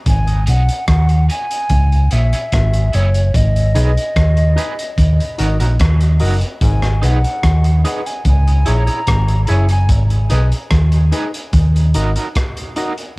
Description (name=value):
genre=dub reggae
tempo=73 BPM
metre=4/4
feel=straight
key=G# minor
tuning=A4 = 440 Hz
part: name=mellow hollow silver concert flute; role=melody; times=0.1-9.9 s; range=C#5 to A#5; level=-24 LUFS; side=equal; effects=cassette tape, dub echo
part: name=hollow-body short-scale fingered electric bass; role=bass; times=0.1-12.2 s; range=F#1 to D#2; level=-13 LUFS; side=equal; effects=none
part: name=crunchy breakbeat drum kit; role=drums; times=0.1-13.2 s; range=hi-hat, kick drum, rim click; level=-20 LUFS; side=equal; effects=cassette tape
part: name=electric guitar at the edge of break-up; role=accompaniment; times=0.5-12.9 s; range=D#4 to C#5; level=-27 LUFS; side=right 3 dB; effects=tremolo, high-pass filter, cassette tape, dub echo
part: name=percussive organ stab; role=stabs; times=0.5-13.0 s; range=D#4 to E5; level=-28 LUFS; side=left 3 dB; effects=chorus, high-pass filter, cassette tape, dub echo
part: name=clav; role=riff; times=6.6-6.9 s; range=G#2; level=-34 LUFS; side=left 4 dB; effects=none
room=small room reverb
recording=home recording on cassette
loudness=-12 LUFS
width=side -25 dB against mid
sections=0.0-13.2 A section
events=break 0.0-6.6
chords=0.1 G#m; 1.7 C#m; 3.3 G#m; 5.0 D#m; 6.6 G#m; 8.3 C#m; 9.9 G#m; 11.5 D#m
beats=| 0.06 0.88 1.70 2.52 | 3.34 4.16 4.98 5.80 | 6.62 7.44 8.26 9.08 | 9.90 10.72 11.54 12.36